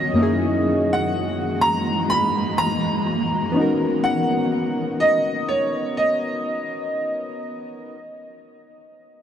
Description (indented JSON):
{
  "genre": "R&B",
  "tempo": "62 BPM",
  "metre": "4/4",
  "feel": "swing 58% on 16ths",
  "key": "B major",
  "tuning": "A4 = 439 Hz",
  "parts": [
    { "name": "clear baby grand piano", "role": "melody", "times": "0.0-7.4 s", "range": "C#5 to B5", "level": "-23 LUFS", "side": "right 1 dB", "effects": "lush chorus, tape echo" },
    { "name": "warm analog keys", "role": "accompaniment", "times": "0.0-7.9 s", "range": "F#2 to A#4", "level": "-24 LUFS", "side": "left 1 dB", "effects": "chorus" },
    { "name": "granular cloud pad", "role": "sustained chords", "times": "0.0-4.0 s", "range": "D#3 to D#5", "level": "-26 LUFS", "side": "equal", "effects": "built-in reverb" }
  ],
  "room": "wet huge ambient reverb, RT60 5.3 s",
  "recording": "dreamy mix soaked in reverb",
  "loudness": "-19 LUFS",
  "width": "side -9 dB against mid",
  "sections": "0.0-7.9 A section",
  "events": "none",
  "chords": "0.2 F#13; 3.6 Bmaj9"
}